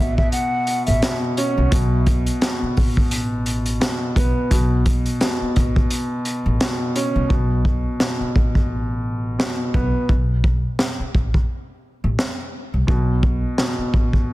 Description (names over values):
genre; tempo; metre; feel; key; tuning
hip hop, boom-bap hip-hop; 86 BPM; 4/4; swing 56% on 16ths; unclear; A4 = 439 Hz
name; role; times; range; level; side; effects
breathy mellow silver concert flute; melody; 0.0-1.2 s; E5 to F#5; -26 LUFS; left 1 dB; high-pass filter, low-pass filter, tape echo
dark upright piano; accompaniment; 0.0-14.3 s; B2 to C#4; -24 LUFS; equal; high-pass filter, low-pass filter
upright bass; bass; 0.0-14.3 s; A1 to C2; -22 LUFS; equal; none
crunchy breakbeat drum kit; drums; 0.2-14.3 s; hi-hat, kick drum, snare drum; -20 LUFS; equal; none
room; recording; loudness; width
light reverb, small room reverb; dense, heavily limited modern master; -18 LUFS; side -18 dB against mid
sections
0.0-7.3 A section; 7.3-14.3 B section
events
break 5.9-7.3; hi-hats muted 7.3-14.3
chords
0.0 A69; 1.7 Asus2; 4.5 Aadd9; 7.3 Asus2